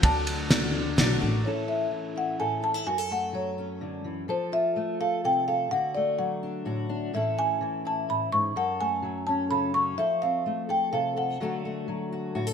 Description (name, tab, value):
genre	indie folk with a building arrangement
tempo	126 BPM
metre	3/4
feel	straight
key	A major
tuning	A4 = 440 Hz
part	marimba with soft mallets	melody	0.0-12.3 s	C5 to C#6	-27 LUFS	equal	ping-pong delay
part	clear grand piano	accompaniment	0.0-1.5 s	D2 to D5	-33 LUFS	right 2 dB	none
part	picked steel-string acoustic guitar	accompaniment	0.0-1.5 s	D3 to F#4	-32 LUFS	left 8 dB	lush chorus
part	upright bass	bass	0.0-1.4 s	A1 to D2	-28 LUFS	right 1 dB	none
part	cloth-damped thuddy drum kit	drums	0.0-1.1 s	kick drum, ride cymbal, snare drum	-24 LUFS	equal	gated reverb
part	fingerpicked steel-string acoustic guitar	accompaniment	1.4-12.5 s	F#2 to A4	-31 LUFS	left 2 dB	lush chorus
room	moderate lush hall reverb, RT60 1.7 s, small room ambience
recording	bright 1980s-style digital production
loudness	-25 LUFS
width	side -7 dB against mid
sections	0.0-1.4 A section; 1.4-12.5 B section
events	none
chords	0.0 D; 1.4 A; 2.9 F#m; 4.3 F; 5.7 D; 7.1 A; 8.6 F#m; 10.0 F; 11.4 D